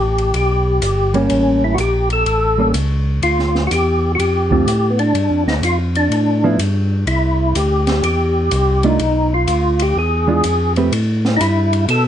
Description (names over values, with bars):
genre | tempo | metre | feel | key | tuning
soul jazz organ trio | 125 BPM | 4/4 | swing 66% on 8ths | unclear | A4 = 440 Hz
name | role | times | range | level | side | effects
percussive tonewheel organ | melody | 0.0-12.0 s | B3 to A4 | -17 LUFS | equal | slow rotary speaker, chorus vibrato
tonewheel organ | bass | 0.0-12.1 s | G1 to B2 | -17 LUFS | equal | overdrive
open jazz drum kit | drums | 0.2-12.0 s | hi-hat, kick drum, ride cymbal, snare drum | -26 LUFS | left 1 dB | none
hollow-body jazz guitar | accompaniment | 1.1-10.9 s | D3 to B4 | -18 LUFS | right 3 dB | none
room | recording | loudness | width
light reverb | dark, warm production, nothing above 10.3 kHz | -14 LUFS | side -10 dB against mid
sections
0.0-10.9 A section; 10.9-12.1 B section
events
none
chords
0.0 Em (rootless); 1.3 A7b9; 3.2 Dm; 5.2 G7sus2; 7.1 C; 9.0 Bdim; 10.0 E7b9; 10.9 A7sus2